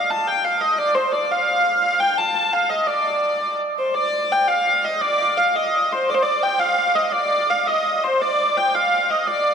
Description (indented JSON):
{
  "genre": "medieval",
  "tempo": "113 BPM (dotted quarters)",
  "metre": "6/8",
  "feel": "straight",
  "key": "D phrygian",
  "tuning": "A4 = 443 Hz",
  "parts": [
    { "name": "dark hurdy-gurdy", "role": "solo", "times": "0.0-9.5 s", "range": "C5 to A5", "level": "-17 LUFS", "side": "equal", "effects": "none" }
  ],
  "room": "wet church reverb, RT60 3.6 s",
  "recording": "none",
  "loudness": "-17 LUFS",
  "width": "side -6 dB against mid",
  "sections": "0.0-4.0 A section; 4.0-9.5 B section",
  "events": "none",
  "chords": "none"
}